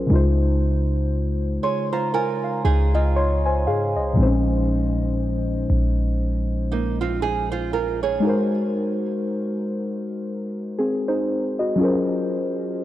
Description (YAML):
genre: R&B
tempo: 59 BPM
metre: 4/4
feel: swing 58% on 16ths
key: Bb minor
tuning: A4 = 439 Hz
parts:
  - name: muted felt-like synth keys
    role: accompaniment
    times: 0.0-12.8 s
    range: Bb2 to C6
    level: -22 LUFS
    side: left 1 dB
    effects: chorus
  - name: clean 808-style bass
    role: bass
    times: 0.0-8.2 s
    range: Bb1 to Ab2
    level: -22 LUFS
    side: equal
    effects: none
  - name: nylon-string guitar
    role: arpeggios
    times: 1.6-8.5 s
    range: Bb3 to Db5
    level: -26 LUFS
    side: right 8 dB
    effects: ping-pong delay
room: moderate lush hall reverb, RT60 3.1 s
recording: worn, warbling old tape, cassette tape, warbly pitch drift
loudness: -20 LUFS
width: side -14 dB against mid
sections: 0.0-12.8 A section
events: synth keys fill 1.1-4.2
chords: 0.1 Dbmaj9; 4.2 Bbm11; 8.2 Ab9; 11.8 Gbmaj9#11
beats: | 0.10 1.12 2.14 3.15 | 4.17 5.19 6.21 7.22 | 8.24 9.26 10.27 11.29 | 12.31